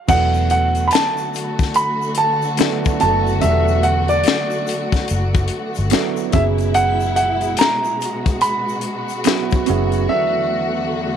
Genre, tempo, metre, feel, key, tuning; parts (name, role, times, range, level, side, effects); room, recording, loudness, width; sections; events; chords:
R&B, neo-soul; 72 BPM; 4/4; swing 62% on 16ths; A4 = 441 Hz
clear grand piano; melody; 0.1-11.2 s; D5 to B5; -19 LUFS; right 1 dB
warm upright piano; accompaniment; 0.1-11.2 s; F#3 to A4; -24 LUFS; right 12 dB
warm studio string section; sustained chords; 0.1-11.2 s; E2 to F#4; -25 LUFS; left 2 dB
vintage muted fingered electric bass; bass; 0.1-10.1 s; E1 to G1; -19 LUFS; left 1 dB
tight funk drum kit; drums; 0.1-10.1 s; crash cymbal, finger snaps, hi-hat, kick drum, snare drum; -20 LUFS; left 5 dB
egg shaker and finger snaps; percussion; 0.1-10.1 s; -34 LUFS; left 16 dB
moderate spring reverb, RT60 1.6 s, small room ambience; 1960s-style stereo with parts hard left and right; -15 LUFS; side -8 dB against mid
0.1-11.2 A section
0.1 E9sus4; 6.3 F#9sus4; 10.1 E9sus4